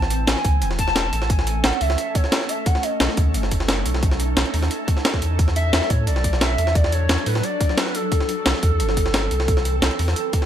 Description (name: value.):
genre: liquid drum and bass.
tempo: 176 BPM.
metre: 4/4.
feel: straight.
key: A major.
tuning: A4 = 440 Hz.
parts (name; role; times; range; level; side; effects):
hollow clarinet-like synth lead; melody; 0.0-3.3, 5.6-10.5 s; A4 to A5; -26 LUFS; equal; wide subtle chorus, ping-pong delay.
shimmering ambient pad; sustained chords; 0.0-10.5 s; E3 to A4; -28 LUFS; right 2 dB; chorus, built-in reverb, sidechain pumping.
warm sub bass; bass; 0.0-10.1 s; E1 to A2; -22 LUFS; equal; none.
jungle sampler-style drum kit; drums; 0.0-10.5 s; hi-hat, snare drum; -28 LUFS; equal; overdrive, high-pass filter on hats, studio ambience, high-pass filter on snare.
breakbeat sampler-style drum kit; drums; 0.1-10.4 s; hi-hat, snare drum; -24 LUFS; equal; studio ambience.
electronic kick drum; drums; 0.4-10.4 s; none; -20 LUFS; equal; studio ambience.
room: digital ambience.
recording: none.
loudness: -18 LUFS.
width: side -10 dB against mid.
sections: 0.0-10.5 A section.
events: none.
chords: 0.0 Amaj7; 2.7 B9; 5.2 E9sus4; 8.1 C6.